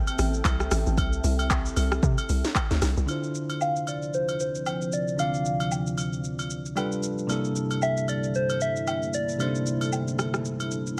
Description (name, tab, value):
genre	amapiano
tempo	114 BPM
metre	4/4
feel	swing 58% on 16ths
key	D minor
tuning	A4 = 438 Hz
part	deep dark ambient pad	sustained chords	0.0-11.0 s	C2 to G5	-36 LUFS	equal	chorus, built-in reverb, sidechain pumping, low-pass filter
part	hollow log drum bass	bass	0.0-3.1 s	A1 to C3	-27 LUFS	equal	none
part	afro-pop drum kit	drums	0.1-11.0 s	handclaps, hi-hat, kick drum, rim click, shaker, snare drum	-31 LUFS	equal	overdrive
part	agogo bells and woodblock	percussion	0.1-10.7 s	none	-38 LUFS	equal	none
part	bell-like tine electric piano	accompaniment	3.1-11.0 s	C3 to D5	-32 LUFS	equal	low-pass filter
part	soft struck synth lead	melody	3.6-10.2 s	C5 to F5	-31 LUFS	equal	chorus, low-pass filter, tape echo
room	light reverb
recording	none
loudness	-27 LUFS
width	mono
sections	0.0-3.1 A section; 3.1-11.0 B section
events	drop 0.0-3.1; filter sweep 3.1-11.0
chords	0.0 Am7; 3.1 Dm9; 6.8 G7; 7.3 C13